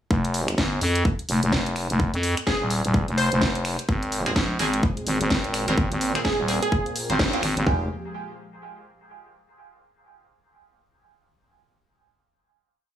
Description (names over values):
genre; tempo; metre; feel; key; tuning
bass house; 127 BPM; 4/4; swing 60% on 16ths; F minor; A4 = 441 Hz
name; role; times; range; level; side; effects
growling FM bass; bass; 0.1-7.9 s; Eb1 to F2; -24 LUFS; equal; tube saturation, sidechain pumping
garage drum kit; drums; 0.1-7.8 s; kick drum, toms; -24 LUFS; equal; none
garage drum kit; drums; 0.2-7.6 s; finger snaps, hi-hat, snare drum; -28 LUFS; equal; none
glassy wavetable pluck; melody; 2.5-7.0 s; Ab4 to C5; -30 LUFS; right 2 dB; chorus, dub echo
sweeping resonant pad; sustained chords; 3.9-7.9 s; Bb2 to G4; -33 LUFS; equal; chorus, vintage 12-bit sampler grit, sidechain pumping
band-passed chord stab; stabs; 4.3-7.8 s; Ab3 to C5; -31 LUFS; right 2 dB; phaser, wide subtle chorus, sidechain pumping, dub echo
room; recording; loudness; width
light reverb; small room ambience; -21 LUFS; side -11 dB against mid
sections
0.1-7.7 drop; 7.7-9.6 final chord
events
drop 0.1-7.7; band accent 7.2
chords
0.1 N.C.; 3.9 Abadd9; 7.7 Fmadd9